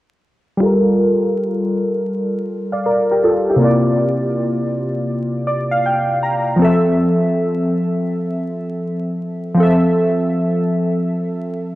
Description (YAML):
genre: hip hop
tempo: 80 BPM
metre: 4/4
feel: swing 64% on 16ths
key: G dorian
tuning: A4 = 441 Hz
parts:
  - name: warbly lo-fi synth keys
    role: accompaniment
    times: 0.6-11.8 s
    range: C3 to Bb5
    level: -15 LUFS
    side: equal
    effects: chorus, cassette tape, low-pass filter
room: moderate spring reverb, RT60 2.2 s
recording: dark, warm production, vinyl crackle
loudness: -15 LUFS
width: side -16 dB against mid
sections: 0.6-11.8 A section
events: filter sweep on synth keys 0.6-11.8; synth keys fill 5.1-6.6, 11.5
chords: 0.6 Gm9; 3.6 C9sus4; 6.6 Fmaj7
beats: | 0.61 1.36 2.11 2.86 | 3.61 4.36 5.11 5.86 | 6.61 7.36 8.11 8.86 | 9.61 10.36 11.11